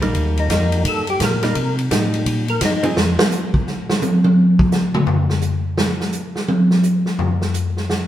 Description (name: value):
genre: soul jazz organ trio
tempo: 170 BPM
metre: 4/4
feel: swing 64% on 8ths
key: C dorian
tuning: A4 = 436 Hz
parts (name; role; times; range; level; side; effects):
- hollow-body jazz guitar; accompaniment; 0.0-3.0 s; F3 to Ab4; -24 LUFS; right 1 dB; none
- mellow tonewheel organ; bass; 0.0-3.2 s; Bb1 to C3; -21 LUFS; equal; chorus vibrato, slow rotary speaker
- swinging big-band drum kit; drums; 0.0-8.0 s; hi-hat, kick drum, ride cymbal, snare drum, toms; -17 LUFS; equal; none
- percussive tonewheel organ; melody; 0.4-2.9 s; Eb4 to Bb4; -22 LUFS; left 2 dB; chorus vibrato, slow rotary speaker
room: moderate stone room reverb, RT60 1.3 s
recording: band playing live in one room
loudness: -15 LUFS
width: side -12 dB against mid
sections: 0.0-8.1 A section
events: tonewheel organ solo 0.0-8.1; drum solo 3.0-8.1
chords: 0.0 Cm7; 3.0 N.C.